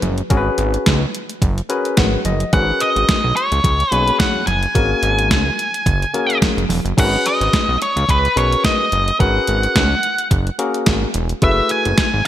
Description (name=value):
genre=early-eighties boogie funk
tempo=108 BPM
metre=4/4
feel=swing 56% on 16ths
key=G# minor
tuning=A4 = 442 Hz
part: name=fat analog bass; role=bass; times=0.0-12.2 s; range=E1 to C#2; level=-19 LUFS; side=equal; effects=none
part: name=crisp 8-bit digital drum machine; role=drums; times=0.0-12.3 s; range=crash cymbal, hi-hat, kick drum, snare drum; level=-19 LUFS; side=equal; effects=overdrive, gated reverb
part: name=congas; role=percussion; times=0.0-6.8 s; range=none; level=-27 LUFS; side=right 3 dB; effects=none
part: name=barky tine electric piano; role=accompaniment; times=0.3-12.1 s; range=A3 to G#5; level=-22 LUFS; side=left 3 dB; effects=overdrive
part: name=octave-fuzz lead guitar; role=melody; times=2.5-12.2 s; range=B4 to G#5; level=-18 LUFS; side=equal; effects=distortion
room=moderate lush hall reverb, RT60 1.7 s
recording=bright 1980s-style digital production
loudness=-14 LUFS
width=side -12 dB against mid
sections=0.0-7.0 A section; 7.0-12.3 A section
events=tine electric piano fill 1.4-2.5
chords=0.0 G#m11; 11.4 F#m11